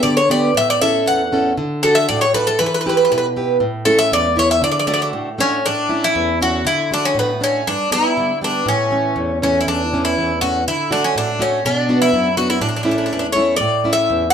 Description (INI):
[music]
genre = greek folk, Greek bouzouki band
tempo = 119 BPM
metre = 2/4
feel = straight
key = unclear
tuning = A4 = 440 Hz
[part]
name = Greek bouzouki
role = melody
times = 0.0-14.3 s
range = B3 to F#5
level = -16 LUFS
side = left 1 dB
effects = none
[part]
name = picked plugged-in steel-string acoustic guitar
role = accompaniment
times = 0.0-14.3 s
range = E2 to B4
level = -19 LUFS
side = right 2 dB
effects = none
[sound]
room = wet small room reverb, RT60 0.5 s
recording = heard from further back in the room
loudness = -15 LUFS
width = side -8 dB against mid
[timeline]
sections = 0.0-5.6 A section; 5.6-13.6 B section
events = speeding up 0.0-14.3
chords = 0.0 G; 0.5 A; 1.6 D; 2.6 Em; 3.6 A; 4.6 D; 5.6 A; 6.6 D; 7.7 G; 8.7 A; 10.6 D; 11.6 Bm; 12.6 A